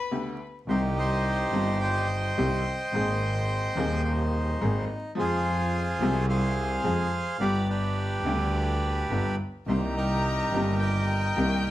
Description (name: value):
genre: tango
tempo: 107 BPM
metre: 4/4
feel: rubato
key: C minor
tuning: A4 = 440 Hz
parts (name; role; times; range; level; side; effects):
- warm violin; second line; 0.0-0.4, 9.7-11.7 s; B4 to Bb5; -34 LUFS; left 4 dB; slapback echo
- clear upright piano; accompaniment; 0.1-11.6 s; Eb1 to Ab4; -29 LUFS; left 1 dB; none
- bandoneon; melody; 0.7-11.7 s; D4 to G5; -29 LUFS; right 1 dB; none
- warm double bass; bass; 0.7-11.6 s; G1 to F2; -29 LUFS; equal; none
room: moderate studio reverb, RT60 0.8 s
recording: vinyl crackle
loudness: -24 LUFS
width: side -14 dB against mid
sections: 0.7-11.7 A section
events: break 0.0-0.7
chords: 0.0 Gadd9; 0.7 Cm; 2.9 Abadd9; 5.2 Fm; 7.4 G; 9.7 Cm7